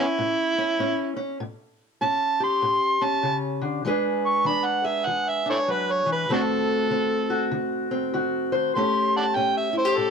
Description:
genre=acoustic country blues, solo or duo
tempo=98 BPM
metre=4/4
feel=swing 62% on 8ths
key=unclear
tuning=A4 = 440 Hz
part: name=overdriven harmonica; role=melody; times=0.0-10.1 s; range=D4 to C#6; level=-23 LUFS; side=right 2 dB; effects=plate reverb
part: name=fingerpicked steel-string acoustic guitar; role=accompaniment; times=0.0-10.1 s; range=A2 to C#5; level=-25 LUFS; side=left 2 dB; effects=none
room=moderate studio reverb, RT60 0.8 s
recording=none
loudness=-21 LUFS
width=side -6 dB against mid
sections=0.0-10.1 A section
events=harmonica solo 0.0-10.1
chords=0.0 A7; 3.8 E7; 6.3 D7; 8.7 A7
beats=0.17 0.79 | 1.40 2.01 2.62 3.23 | 3.85 4.46 5.07 5.68 | 6.29 6.91 7.52 8.13 | 8.74 9.35 9.96

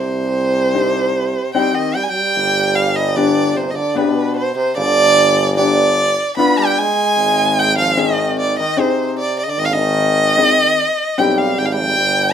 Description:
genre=klezmer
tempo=75 BPM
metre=3/4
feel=straight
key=unclear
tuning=A4 = 439 Hz
part: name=warm violin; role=melody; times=0.0-12.3 s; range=B4 to B5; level=-16 LUFS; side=right 1 dB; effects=none
part: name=bright trombone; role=second line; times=0.0-12.3 s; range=B2 to B3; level=-22 LUFS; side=right 3 dB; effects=none
part: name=clear tuba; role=bass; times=0.0-12.3 s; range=G1 to C2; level=-20 LUFS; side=equal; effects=none
part: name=clear upright piano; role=accompaniment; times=0.7-11.6 s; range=B3 to Ab4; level=-18 LUFS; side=left 7 dB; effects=none
room=moderate studio reverb, RT60 0.6 s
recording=minimal, uncompressed stereo recording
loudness=-13 LUFS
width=side -8 dB against mid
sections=0.0-2.4 A section; 2.4-12.3 A section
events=none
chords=0.0 Cm; 2.4 G; 7.2 Ab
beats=0.74 1.55 | 2.35 3.16 3.96 | 4.76 5.57 6.37 | 7.17 7.97 8.78 | 9.58 10.38 11.18 | 11.98

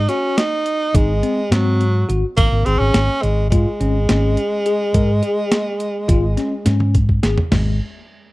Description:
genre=progressive instrumental, band music in an uneven meter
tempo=210 BPM (eighths)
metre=9/8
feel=straight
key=unclear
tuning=A4 = 436 Hz
part: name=breathy tenor saxophone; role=melody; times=0.0-6.9 s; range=Gb3 to Eb4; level=-20 LUFS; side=right 1 dB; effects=none
part: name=hollow-body short-scale fingered electric bass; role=bass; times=0.0-7.8 s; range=Ab1 to Ab2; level=-17 LUFS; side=equal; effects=none
part: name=bell-like tine electric piano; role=arpeggios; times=0.1-7.8 s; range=Ab3 to Bb4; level=-24 LUFS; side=left 3 dB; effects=fast stereo tremolo
part: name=boom bap sampler-style drum kit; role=drums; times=0.1-7.7 s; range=crash cymbal, hi-hat, kick drum, snare drum, toms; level=-19 LUFS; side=equal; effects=none
room=little or no reverb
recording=dry, close 1970s-style studio recording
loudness=-15 LUFS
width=side -20 dB against mid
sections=0.0-7.5 A section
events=drum fill 6.7-7.5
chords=0.0 Ab7; 2.4 Db5/Ab; 7.5 N.C.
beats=0.09 0.38 0.66 0.95 1.23 1.52 1.80 2.09 | 2.38 2.66 2.95 3.23 3.52 3.81 4.09 4.38 4.66 | 4.95 5.24 5.52 5.81 6.09 6.38 6.66 6.95 7.24 | 7.52

